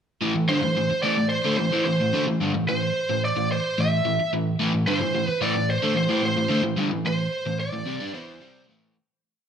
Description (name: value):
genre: rock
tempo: 110 BPM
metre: 4/4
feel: straight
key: A minor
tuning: A4 = 440 Hz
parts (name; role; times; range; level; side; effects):
- crunchy overdriven guitar; riff; 0.2-9.0 s; G2 to E4; -23 LUFS; equal; none
- lead guitar through a small cranked amp; melody; 0.5-8.6 s; C5 to E5; -25 LUFS; right 2 dB; overdrive
room: moderate large studio reverb, RT60 1.4 s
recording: none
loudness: -21 LUFS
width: side -8 dB against mid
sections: 0.2-9.0 riff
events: fade-out 6.8-9.0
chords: 0.2 Am